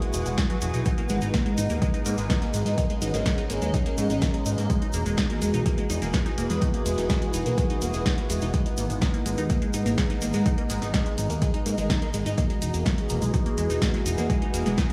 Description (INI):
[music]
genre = melodic techno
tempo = 125 BPM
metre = 4/4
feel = straight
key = G# minor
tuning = A4 = 437 Hz
[part]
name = sweeping resonant pad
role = sustained chords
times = 0.0-14.9 s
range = E3 to G#4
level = -34 LUFS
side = equal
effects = chorus, phaser, sidechain pumping
[part]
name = unison pluck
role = arpeggios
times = 0.0-14.9 s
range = F#3 to D#4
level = -33 LUFS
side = equal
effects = phaser, sidechain pumping, tape echo
[part]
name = deep house drum kit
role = drums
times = 0.0-14.9 s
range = hi-hat, snare drum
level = -35 LUFS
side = equal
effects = overdrive, sidechain pumping on hats, sidechain pumping on cymbals
[part]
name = granular cloud pad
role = texture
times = 0.0-14.9 s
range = E4 to A#5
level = -38 LUFS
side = equal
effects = built-in reverb, ensemble chorus, sidechain pumping
[part]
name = fat analog bass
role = bass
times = 0.1-14.8 s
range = E1 to G#2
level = -30 LUFS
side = equal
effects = sidechain pumping
[part]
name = tight funk drum kit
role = drums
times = 0.1-14.9 s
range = hi-hat, snare drum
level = -47 LUFS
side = equal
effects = none
[part]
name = egg shaker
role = percussion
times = 0.1-14.9 s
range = none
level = -41 LUFS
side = equal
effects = none
[part]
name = electronic kick drum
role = drums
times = 0.4-14.9 s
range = none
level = -28 LUFS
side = equal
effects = overdrive
[sound]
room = light reverb, digital ambience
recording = small room reverb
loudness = -25 LUFS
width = mono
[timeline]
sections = 0.0-14.9 A section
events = none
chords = 0.0 Eadd9; 0.9 G#m; 4.7 Eadd9; 8.5 G#m; 12.4 Eadd9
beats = 0.38 | 0.86 1.34 1.82 2.30 | 2.78 3.26 3.74 4.22 | 4.70 5.18 5.66 6.14 | 6.62 7.10 7.58 8.06 | 8.54 9.02 9.50 9.98 | 10.46 10.94 11.42 11.90 | 12.38 12.86 13.34 13.82 | 14.30 14.78